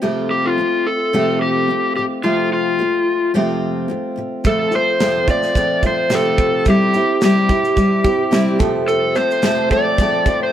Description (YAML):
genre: acoustic pop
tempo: 108 BPM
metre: 4/4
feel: swing 55% on 16ths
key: F major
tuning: A4 = 439 Hz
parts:
  - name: picked steel-string acoustic guitar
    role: accompaniment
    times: 0.0-10.5 s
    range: F2 to A4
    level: -18 LUFS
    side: equal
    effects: none
  - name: overdriven slide guitar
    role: melody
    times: 0.3-10.5 s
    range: F4 to D5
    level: -18 LUFS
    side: left 1 dB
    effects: none
  - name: modern studio drum kit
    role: drums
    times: 4.4-10.4 s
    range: kick drum, shaker, snare drum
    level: -21 LUFS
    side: right 1 dB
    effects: none
room: moderate plate reverb, RT60 2.0 s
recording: heard from further back in the room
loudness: -14 LUFS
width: side -10 dB against mid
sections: 0.0-4.5 A section; 4.5-10.5 B section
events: none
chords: 0.0 F; 6.7 C; 8.6 F